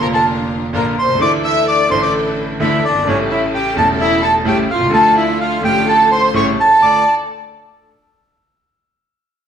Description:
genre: tango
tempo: 128 BPM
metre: 4/4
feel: rubato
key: D minor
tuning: A4 = 440 Hz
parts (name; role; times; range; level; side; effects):
- bandoneon; melody; 0.0-7.1 s; C#5 to E6; -14 LUFS; right 1 dB; none
- warm studio violin section; second line; 0.0-7.1 s; C#4 to E5; -19 LUFS; left 2 dB; none
- clear concert grand piano; accompaniment; 0.0-7.0 s; E1 to F4; -18 LUFS; right 1 dB; none
- rich symphonic string section; stabs; 0.0-7.0 s; C#4 to Bb4; -25 LUFS; left 3 dB; none
room: wet stone room reverb, RT60 1.3 s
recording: band playing live in one room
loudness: -12 LUFS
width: side -8 dB against mid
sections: 0.0-6.8 A section; 6.8-8.7 B section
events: none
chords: 0.0 Bb; 1.2 Dsus2; 3.1 A7; 4.9 Dm; 6.3 A7; 6.8 Dm

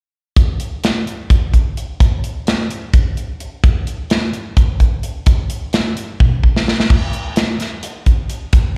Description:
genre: jazz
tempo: 257 BPM (eighths)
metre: 7/8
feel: straight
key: none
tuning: none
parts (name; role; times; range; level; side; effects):
- modern studio drum kit; drums; 0.4-8.6 s; crash cymbal, hi-hat, kick drum, snare drum, toms; -16 LUFS; equal; none
room: light reverb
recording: live gig heard through the venue's PA, recital hall reverb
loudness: -17 LUFS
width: mono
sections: 0.4-6.9 A section; 6.9-8.8 B section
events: drum fill 6.2-6.9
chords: none

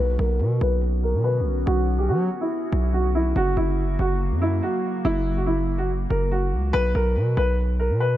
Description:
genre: hip hop, drill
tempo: 142 BPM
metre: 4/4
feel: half-time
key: B harmonic minor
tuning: A4 = 440 Hz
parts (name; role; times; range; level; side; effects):
- dark grand piano; melody; 0.0-8.2 s; E4 to B4; -25 LUFS; equal; low-pass filter, tape echo
- glassy FM pad; sustained chords; 0.0-6.7 s; C#3 to F#4; -32 LUFS; left 1 dB; ensemble chorus, built-in reverb, low-pass filter
- distorted 808-style bass; bass; 0.0-8.2 s; F#1 to F#3; -22 LUFS; equal; distortion
room: light reverb, small room ambience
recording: none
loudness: -20 LUFS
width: side -13 dB against mid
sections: 0.0-6.7 A section; 6.7-8.2 B section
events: filter sweep 0.0-6.7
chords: 0.0 Bmadd9; 3.4 F#; 6.7 B5

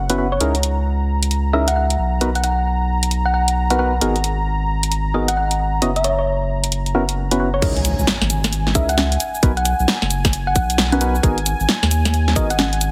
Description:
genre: UK garage, two-step garage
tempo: 133 BPM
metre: 4/4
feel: swing 63% on 16ths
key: C# dorian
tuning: A4 = 441 Hz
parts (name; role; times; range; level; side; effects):
- warm analog pad; sustained chords; 0.0-12.9 s; F#5 to A#5; -30 LUFS; equal; chorus, sidechain pumping
- saturated sub bass; bass; 0.0-12.9 s; F#1 to D#2; -22 LUFS; equal; none
- percussive organ stab; stabs; 0.1-12.5 s; B3 to D#5; -25 LUFS; equal; chorus, digital delay
- punchy analog drum machine; drums; 0.1-12.9 s; congas, crash cymbal, hi-hat, shaker, snare drum; -22 LUFS; equal; none
- thumb-piano-like synth pluck; melody; 0.3-12.7 s; C#5 to F#5; -25 LUFS; equal; chorus, digital delay
- electronic kick drum; drums; 7.6-12.5 s; none; -20 LUFS; equal; none
- impact; sound effects; 7.7-9.4 s; none; -30 LUFS; equal; none
room: moderate digital room reverb, RT60 1.1 s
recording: heavily compressed radio sound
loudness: -19 LUFS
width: mono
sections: 0.0-7.6 A section; 7.6-12.9 B section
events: drop 7.6-12.9; impact 7.6-9.4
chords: 0.4 C#m69; 2.0 Bmaj7; 4.0 G#m9; 5.8 F#7sus4; 7.6 C#m69; 9.2 Bmaj7; 11.2 G#m9

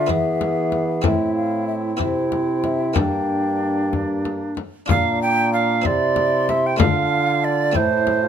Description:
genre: classical, renaissance-style consort dance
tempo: 63 BPM (dotted quarters)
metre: 6/8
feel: straight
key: G dorian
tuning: A4 = 437 Hz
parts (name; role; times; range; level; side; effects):
- mellow hollow concert flute; melody; 0.0-8.3 s; C5 to C6; -26 LUFS; left 6 dB; none
- mellow tenor recorder; second line; 0.0-8.3 s; D4 to G5; -21 LUFS; right 4 dB; none
- buff-stop harpsichord; accompaniment; 0.0-8.3 s; G2 to A4; -27 LUFS; left 1 dB; none
- warm bassoon; accompaniment; 0.0-8.3 s; Bb3 to F4; -28 LUFS; left 2 dB; none
- clear trombone; bass; 0.0-8.3 s; G2 to E3; -24 LUFS; right 2 dB; none
- frame drum; percussion; 0.1-8.3 s; none; -22 LUFS; left 5 dB; none
room: light reverb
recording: close, detailed microphones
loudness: -18 LUFS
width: side -8 dB against mid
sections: 0.0-4.9 A section; 4.9-8.3 A section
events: none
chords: 0.1 E; 1.1 Am; 2.0 C; 3.0 Gm; 4.9 Bb; 5.9 C; 6.8 Dm; 7.8 Am

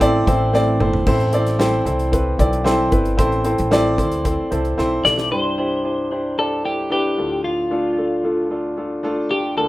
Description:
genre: piano-driven pop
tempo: 113 BPM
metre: 4/4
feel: straight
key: unclear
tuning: A4 = 440 Hz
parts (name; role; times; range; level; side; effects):
- twelve-string electric guitar; melody; 0.0-0.5, 5.0-9.7 s; F4 to D5; -20 LUFS; left 1 dB; none
- clear concert grand piano; accompaniment; 0.0-9.7 s; C2 to A5; -19 LUFS; equal; none
- fingerpicked steel-string acoustic guitar; riff; 0.0-1.1 s; A3 to C5; -24 LUFS; right 3 dB; none
- upright bass; bass; 0.0-5.3 s; G1 to D2; -21 LUFS; equal; none
- modern studio drum kit; drums; 0.0-5.3 s; crash cymbal, hi-hat, kick drum, snare drum, toms; -24 LUFS; equal; none
room: moderate studio reverb, RT60 0.6 s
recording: rough home demo mix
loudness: -16 LUFS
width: side -17 dB against mid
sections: 0.0-1.1 A section; 1.1-5.3 B section; 5.3-9.7 C section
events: drum fill 0.5-1.1, 4.8-5.3; grand piano fill 4.3-5.3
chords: 0.0 Am; 5.3 Cadd9; 7.2 Dm

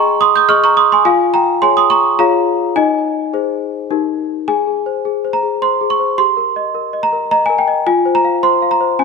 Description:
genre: classical, lullaby for celesta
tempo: 106 BPM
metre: 3/4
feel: straight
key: Ab major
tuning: A4 = 439 Hz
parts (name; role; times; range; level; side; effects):
- worn celesta; solo; 0.0-9.0 s; Db4 to G6; -12 LUFS; equal; none
room: moderate concert hall reverb, RT60 2.0 s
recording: dark, warm production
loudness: -12 LUFS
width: side -4 dB against mid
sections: 0.0-4.5 A section; 4.5-9.0 B section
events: none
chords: 0.0 Ab; 1.1 Db/F; 2.2 Bbm7/F; 2.8 Ab/Eb; 3.9 Eb; 4.5 Ab; 6.2 Eb/G; 7.9 F5

